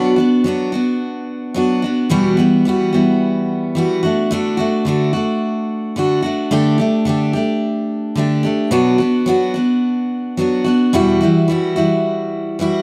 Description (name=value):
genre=pop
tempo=109 BPM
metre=4/4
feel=swing 55% on 16ths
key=unclear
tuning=A4 = 440 Hz
part: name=picked steel-string acoustic guitar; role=solo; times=0.0-12.8 s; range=E2 to G4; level=-17 LUFS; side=equal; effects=none
room=light reverb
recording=dark, warm production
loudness=-17 LUFS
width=mono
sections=0.0-6.5 A section; 6.5-12.8 A section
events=none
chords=0.0 Bm; 2.1 Emadd9; 4.0 D; 6.5 Dsus4; 8.7 Bm; 10.9 Emadd9